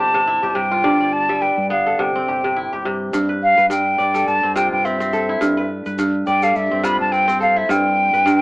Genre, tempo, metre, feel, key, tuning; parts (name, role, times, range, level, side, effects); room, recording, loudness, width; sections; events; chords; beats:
west african traditional, West African string and xylophone music; 105 BPM; 4/4; swing 56% on 16ths; G mixolydian; A4 = 439 Hz
hollow concert flute; melody; 0.0-8.4 s; E5 to B5; -17 LUFS; equal
kora; arpeggios; 0.0-8.4 s; G2 to E5; -20 LUFS; equal
deep dub fingered electric bass; bass; 0.0-8.4 s; G1 to G2; -29 LUFS; equal
egg shaker; percussion; 3.1-8.4 s; -41 LUFS; left 2 dB
light reverb; AM radio sound; -15 LUFS; side -24 dB against mid
0.0-3.1 A section; 3.1-8.4 B section
flute solo 3.1-8.4
0.0 C/G; 0.8 G; 2.0 C/G; 3.1 G; 4.3 C/G; 5.4 G; 6.6 C/G; 7.7 G
0.27 | 0.84 1.42 1.99 2.56 | 3.13 3.71 4.28 4.85 | 5.42 5.99 6.56 7.13 | 7.70 8.26